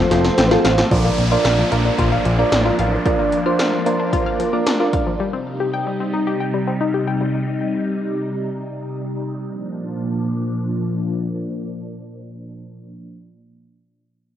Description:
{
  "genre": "synth-pop",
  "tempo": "112 BPM",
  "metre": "4/4",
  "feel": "straight",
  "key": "Bb major",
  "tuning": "A4 = 440 Hz",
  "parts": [
    { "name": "direct-recorded clean electric guitar", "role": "melody", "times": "0.0-0.6 s", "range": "C5", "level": "-24 LUFS", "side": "equal", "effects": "cassette tape, analog delay" },
    { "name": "phased string machine", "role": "sustained chords", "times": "0.0-12.9 s", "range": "Bb2 to A4", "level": "-23 LUFS", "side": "equal", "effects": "ensemble chorus, phaser, low-pass filter" },
    { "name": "fat analog bass", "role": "bass", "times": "0.0-3.0 s", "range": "F1 to Bb1", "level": "-19 LUFS", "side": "equal", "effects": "none" },
    { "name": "soft electric-piano-like synth keys", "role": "accompaniment", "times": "0.1-5.1 s", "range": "C4 to D5", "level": "-21 LUFS", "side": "right 6 dB", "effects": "chorus, low-pass filter" },
    { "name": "analog pluck", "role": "arpeggios", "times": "0.1-7.3 s", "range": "F3 to G5", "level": "-22 LUFS", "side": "left 6 dB", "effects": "chorus, low-pass filter, analog delay" },
    { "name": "80s electronic pad drums", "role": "drums", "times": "0.1-5.1 s", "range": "hi-hat, kick drum, snare drum", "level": "-22 LUFS", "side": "equal", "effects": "cassette tape" },
    { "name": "downlifter", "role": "sound effects", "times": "0.9-5.2 s", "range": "none", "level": "-28 LUFS", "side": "equal", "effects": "none" }
  ],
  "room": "moderate spring reverb, RT60 2.4 s",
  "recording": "home recording on cassette",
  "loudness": "-17 LUFS",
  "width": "side -10 dB against mid",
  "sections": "0.9-9.5 A section; 9.5-13.8 B section",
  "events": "drum fill 0.0-0.9; filter sweep 0.9-9.5",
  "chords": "0.0 F; 0.9 Bb; 5.2 Cm; 9.5 Bb"
}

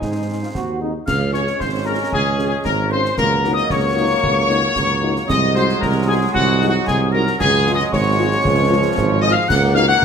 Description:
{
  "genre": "military-style march for wind band",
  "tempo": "114 BPM",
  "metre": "2/4",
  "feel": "straight",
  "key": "Db major",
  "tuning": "A4 = 440 Hz",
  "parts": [
    { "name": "dark trumpet section", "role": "melody", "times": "0.0-10.0 s", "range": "Gb4 to Gb5", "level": "-21 LUFS", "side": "left 3 dB", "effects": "none" },
    { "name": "mellow woodwind section", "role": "second line", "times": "0.0-10.0 s", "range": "Eb4 to Gb5", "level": "-24 LUFS", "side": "left 3 dB", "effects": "none" },
    { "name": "wooden piccolo", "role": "second line", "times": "0.0-10.0 s", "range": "Gb5 to Gb6", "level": "-23 LUFS", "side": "left 3 dB", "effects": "none" },
    { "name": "bright trombone section", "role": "sustained chords", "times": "0.0-10.0 s", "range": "Eb3 to Gb4", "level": "-25 LUFS", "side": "right 4 dB", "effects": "none" },
    { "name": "mellow tuba", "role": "bass", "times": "0.0-10.0 s", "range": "Ab1 to Ab2", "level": "-20 LUFS", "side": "right 3 dB", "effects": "none" },
    { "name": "concert snare drum, concert bass drum and clash cymbals", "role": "drums", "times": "0.0-10.0 s", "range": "none", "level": "-27 LUFS", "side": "left 1 dB", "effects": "none" },
    { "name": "mellow French horn section", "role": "accompaniment", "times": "0.3-9.8 s", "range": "Ab3 to Ab4", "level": "-27 LUFS", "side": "left 5 dB", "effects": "none" }
  ],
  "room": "moderate large studio reverb, RT60 1.2 s",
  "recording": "none",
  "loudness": "-15 LUFS",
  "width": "side -7 dB against mid",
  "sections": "0.0-1.1 A section; 1.1-10.0 B section",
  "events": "none",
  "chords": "0.0 Ab; 1.1 Db; 3.2 Ebm7/Db; 5.3 Ab7/C; 7.4 Db; 9.5 Ebm7/Db"
}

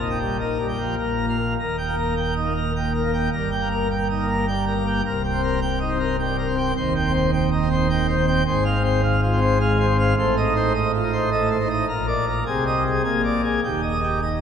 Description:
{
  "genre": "classical, organ toccata",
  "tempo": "104 BPM",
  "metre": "3/4",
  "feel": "straight",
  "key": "Eb major",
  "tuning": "A4 = 440 Hz",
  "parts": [
    { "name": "pipe organ, plenum", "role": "solo", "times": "0.0-14.4 s", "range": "C1 to G5", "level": "-19 LUFS", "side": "equal", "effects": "none" }
  ],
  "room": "wet cathedral reverb, RT60 4.7 s",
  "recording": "minimal, uncompressed stereo recording",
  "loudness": "-19 LUFS",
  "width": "side -8 dB against mid",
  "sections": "0.0-1.6 A section; 1.6-14.4 B section",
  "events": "none",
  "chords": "0.0 Eb/Bb; 1.0 Bb5; 1.6 Eb; 3.3 Eb/G; 5.0 Cm7; 6.8 Cm/Eb; 8.5 Fm/Ab; 10.2 F7/A; 11.9 Bb; 12.5 Ab/C; 13.0 Bb7; 13.6 Eb"
}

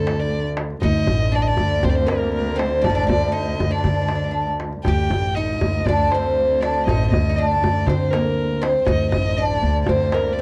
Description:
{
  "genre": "Arabic maqam ensemble",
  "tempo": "119 BPM",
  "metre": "4/4",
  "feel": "straight",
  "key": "D maqam hijaz",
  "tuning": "A4 = 440 Hz",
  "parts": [
    { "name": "oud", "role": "melody", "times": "0.0-10.4 s", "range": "A3 to G4", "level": "-25 LUFS", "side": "equal", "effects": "none" },
    { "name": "rich violin", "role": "second line", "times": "0.0-10.4 s", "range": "A4 to G5", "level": "-29 LUFS", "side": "equal", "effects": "none" },
    { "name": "upright bass", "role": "bass", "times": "0.0-10.1 s", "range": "A1 to D3", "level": "-25 LUFS", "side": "equal", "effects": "none" },
    { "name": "warm cello", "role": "drone", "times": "0.0-10.4 s", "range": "D2", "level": "-31 LUFS", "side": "equal", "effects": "none" },
    { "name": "darbuka", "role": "percussion", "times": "0.1-10.2 s", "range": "none", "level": "-27 LUFS", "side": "equal", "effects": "none" }
  ],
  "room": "little or no reverb",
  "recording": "dry, close 1970s-style studio recording",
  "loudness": "-20 LUFS",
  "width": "mono",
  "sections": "0.0-10.4 A section",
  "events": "none",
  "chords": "none"
}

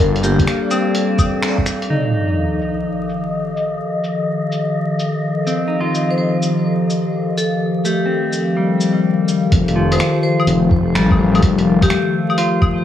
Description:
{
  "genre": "future garage",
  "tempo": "126 BPM",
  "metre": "4/4",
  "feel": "swing 67% on 16ths",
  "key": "unclear",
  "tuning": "A4 = 436 Hz",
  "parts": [
    { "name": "warbly tape-like pad", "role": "sustained chords", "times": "0.0-12.8 s", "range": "Eb3 to F5", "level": "-18 LUFS", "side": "left 2 dB", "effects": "chorus, built-in reverb, sidechain pumping" },
    { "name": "swelling detuned saw bass", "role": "bass", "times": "0.0-0.5, 9.5-11.9 s", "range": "F1 to A1", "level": "-18 LUFS", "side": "left 1 dB", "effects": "sidechain pumping" },
    { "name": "electronic kick drum", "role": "drums", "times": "0.0-1.6, 9.5-12.7 s", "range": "none", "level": "-16 LUFS", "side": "equal", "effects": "none" },
    { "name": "lo-fi sampler-style drum kit", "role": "drums", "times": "0.0-12.7 s", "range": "cabasa, claves, finger snaps, hi-hat", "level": "-24 LUFS", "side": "left 2 dB", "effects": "low-pass filter on hats, low-pass filter on perc, low-pass filter on snare, low-pass filter on room" },
    { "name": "wind-like tuned noise texture", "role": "texture", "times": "0.0-9.5 s", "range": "D5 to Eb5", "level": "-28 LUFS", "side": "left 2 dB", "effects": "built-in reverb, analog chorus" },
    { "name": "vibraphone with hard mallets", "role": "melody", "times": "0.2-0.9, 6.1-12.1 s", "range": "G4 to C5", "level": "-24 LUFS", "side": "left 2 dB", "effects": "diffuse ambient delay" },
    { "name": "clean electric guitar", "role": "accompaniment", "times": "0.2-12.8 s", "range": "F3 to F4", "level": "-21 LUFS", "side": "equal", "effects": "sidechain pumping, diffuse ambient delay" },
    { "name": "sub drop", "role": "sound effects", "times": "1.9-3.8 s", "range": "none", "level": "-22 LUFS", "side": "equal", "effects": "none" }
  ],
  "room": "wet plate reverb, RT60 1.3 s",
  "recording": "dreamy mix soaked in reverb, vinyl crackle, studio ambience",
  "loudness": "-15 LUFS",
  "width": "side -10 dB against mid",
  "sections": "0.0-1.9 A section; 1.9-9.5 B section; 9.5-12.8 A section",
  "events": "band accent 1.4; impact 1.9-3.8",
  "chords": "0.0 Gm9; 1.9 F9"
}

